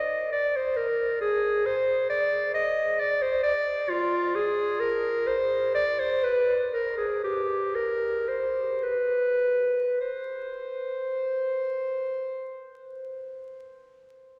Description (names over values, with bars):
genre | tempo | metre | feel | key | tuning
classical, baroque-style fantasia for unaccompanied clarinet | 50-68 BPM | 3/4 | rubato | C minor | A4 = 440 Hz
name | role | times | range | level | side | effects
warm clarinet | solo | 0.0-13.4 s | F4 to Eb5 | -27 LUFS | equal | none
room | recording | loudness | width
wet cathedral reverb, RT60 6.2 s | vinyl crackle | -27 LUFS | mono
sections
0.0-10.0 A section; 10.0-13.4 B section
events
slowing down 2.5-10.0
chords
none